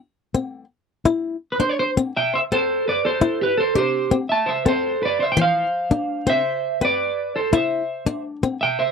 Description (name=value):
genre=highlife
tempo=112 BPM (dotted quarters)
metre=12/8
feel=straight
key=C major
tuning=A4 = 440 Hz
part: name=picked plugged-in swing-style acoustic guitar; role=accompaniment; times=0.3-8.6 s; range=E3 to E4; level=-21 LUFS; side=left 4 dB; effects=none
part: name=clean electric guitar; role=melody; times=1.5-8.9 s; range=G4 to A5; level=-20 LUFS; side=right 2 dB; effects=analog chorus
room=light reverb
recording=dry, close 1970s-style studio recording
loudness=-19 LUFS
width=side -6 dB against mid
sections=0.0-2.2 A section; 2.2-8.9 B section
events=clean electric guitar solo 0.0-2.2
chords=0.0 N.C.; 1.1 Cadd9; 4.3 Am; 5.4 F5; 6.5 C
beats=| 0.00 0.54 1.08 1.62 | 2.16 2.69 3.23 3.77 | 4.31 4.85 5.38 5.92 | 6.46 7.00 7.53 8.07 | 8.61